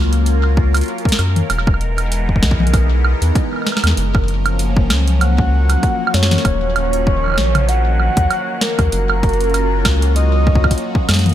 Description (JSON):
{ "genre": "IDM", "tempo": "97 BPM", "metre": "4/4", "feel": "swing 56% on 16ths", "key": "Gb major", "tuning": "A4 = 437 Hz", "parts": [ { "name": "phased analog pad", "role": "sustained chords", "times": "0.0-11.3 s", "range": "Eb3 to Bb4", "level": "-22 LUFS", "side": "left 1 dB", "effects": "phaser, chorus, shimmer reverb" }, { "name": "rubbery square bass", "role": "bass", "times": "0.0-11.3 s", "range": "Eb1 to Gb2", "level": "-16 LUFS", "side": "equal", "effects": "none" }, { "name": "booming analog drum machine", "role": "drums", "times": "0.1-11.3 s", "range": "hi-hat, snare drum, toms, woodblock", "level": "-20 LUFS", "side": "right 1 dB", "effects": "none" }, { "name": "electronic kick drum", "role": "drums", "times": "0.6-11.1 s", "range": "none", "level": "-17 LUFS", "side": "equal", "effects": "none" }, { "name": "warbly nostalgic lead", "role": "melody", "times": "5.2-11.0 s", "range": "Bb4 to Gb5", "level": "-20 LUFS", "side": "equal", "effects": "chorus, digital delay, shimmer reverb" } ], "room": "light reverb", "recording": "none", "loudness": "-13 LUFS", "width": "side -12 dB against mid", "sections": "0.0-11.3 A section", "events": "none", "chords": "0.0 Gbmaj7; 1.5 Emaj7; 4.0 Gbmaj7; 6.4 Ebm9; 8.9 Gbmaj7", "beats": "0.26 0.88 | 1.50 2.12 2.74 3.35 | 3.97 4.59 5.21 5.83 | 6.45 7.07 7.68 8.30 | 8.92 9.54 10.16 10.78" }